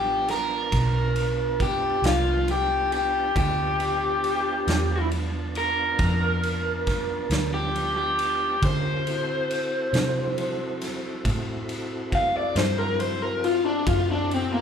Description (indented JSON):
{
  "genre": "slow blues",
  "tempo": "46 BPM (dotted quarters)",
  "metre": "12/8",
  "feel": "straight",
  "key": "G mixolydian",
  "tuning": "A4 = 440 Hz",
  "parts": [
    { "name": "raw garage guitar", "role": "melody", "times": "0.0-14.6 s", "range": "Bb3 to F5", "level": "-24 LUFS", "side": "left 1 dB", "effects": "overdrive, phaser" },
    { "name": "tonewheel organ", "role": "sustained chords", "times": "0.0-14.6 s", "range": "B3 to A5", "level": "-34 LUFS", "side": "right 2 dB", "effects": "chorus vibrato, slow rotary speaker" },
    { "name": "vintage muted fingered electric bass", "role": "bass", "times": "0.0-14.6 s", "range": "A1 to D3", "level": "-28 LUFS", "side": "right 1 dB", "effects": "none" },
    { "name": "raw garage drum kit", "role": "drums", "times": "0.3-14.5 s", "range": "kick drum, ride cymbal, snare drum", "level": "-30 LUFS", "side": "right 1 dB", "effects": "none" }
  ],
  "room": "moderate large studio reverb, RT60 1.2 s",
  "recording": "band playing live in one room",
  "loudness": "-22 LUFS",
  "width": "side -7 dB against mid",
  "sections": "0.0-14.6 A section",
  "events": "overdriven electric guitar solo 0.0-14.6",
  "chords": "0.0 G7; 8.6 D7",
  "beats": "0.72 2.04 | 3.35 4.67 5.98 7.30 | 8.61 9.93 11.24 12.55 | 13.86"
}